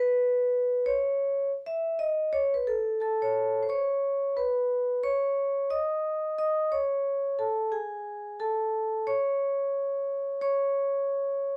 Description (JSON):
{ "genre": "hip hop", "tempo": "89 BPM", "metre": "4/4", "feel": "swing 62% on 16ths", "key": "unclear", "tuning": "A4 = 440 Hz", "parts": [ { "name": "vibraphone with medium mallets", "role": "solo", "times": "0.0-11.6 s", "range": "G#4 to D#6", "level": "-28 LUFS", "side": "equal", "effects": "none" } ], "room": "light reverb", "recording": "none", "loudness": "-28 LUFS", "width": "mono", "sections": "0.0-3.7 A section; 3.7-11.6 B section", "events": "vibraphone solo 0.0-3.7, 3.7-11.6", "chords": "0.0 N.C.; 3.7 G#madd11; 9.1 N.C." }